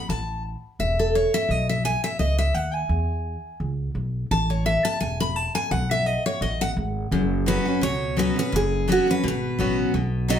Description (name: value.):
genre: bluegrass.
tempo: 171 BPM.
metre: 4/4.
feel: swing 55% on 8ths.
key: unclear.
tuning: A4 = 440 Hz.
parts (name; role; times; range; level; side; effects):
picked steel-string acoustic guitar; accompaniment; 0.0-10.4 s; F#2 to B5; -24 LUFS; left 1 dB; none.
upright bass; bass; 0.1-10.4 s; E1 to E2; -26 LUFS; equal; none.
picked steel-string acoustic guitar; melody; 7.5-10.4 s; F#4 to D#5; -24 LUFS; right 2 dB; none.
room: wet studio reverb, RT60 0.6 s.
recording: heard from further back in the room.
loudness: -21 LUFS.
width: side -9 dB against mid.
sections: 0.0-7.1 A section; 7.1-10.4 B section.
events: steel-string acoustic guitar solo 0.0-7.1.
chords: 0.1 A5; 1.5 B; 2.9 E; 4.3 A5; 5.7 G#m7; 7.1 F#sus4.